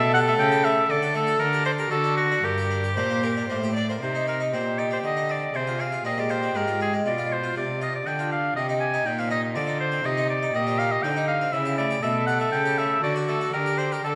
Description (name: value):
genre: classical, baroque-style sonata movement with continuo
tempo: 119 BPM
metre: 3/4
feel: straight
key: G minor, C minor from 4.0 s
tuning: A4 = 440 Hz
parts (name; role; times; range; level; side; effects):
- bright oboe; melody; 0.0-14.2 s; F#4 to Ab5; -28 LUFS; equal; none
- warm violin; second line; 0.0-14.2 s; D4 to D5; -31 LUFS; equal; none
- harpsichord; accompaniment; 0.0-14.2 s; G2 to G4; -32 LUFS; equal; none
- rich cello; bass; 0.0-14.2 s; G2 to D3; -31 LUFS; equal; none
room: wet concert hall reverb, RT60 2.0 s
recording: none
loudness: -24 LUFS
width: mono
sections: 0.0-4.0 A section; 4.0-14.2 A section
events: none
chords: 0.0 A7; 0.9 D; 1.4 Gm/D; 1.9 D7; 2.4 Gm; 4.0 Cm; 5.5 Fm; 7.1 Bdim; 8.6 Ebmaj13/Bb; 11.5 A7; 13.0 D; 13.5 Gm/D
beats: 0.39 | 0.89 1.40 1.91 | 2.43 2.97 3.50 | 4.02 4.53 5.04 | 5.54 6.05 6.55 | 7.06 7.57 8.07 | 8.57 9.06 9.55 | 10.04 10.54 11.04 | 11.53 12.03 12.53 | 13.03 13.53 14.04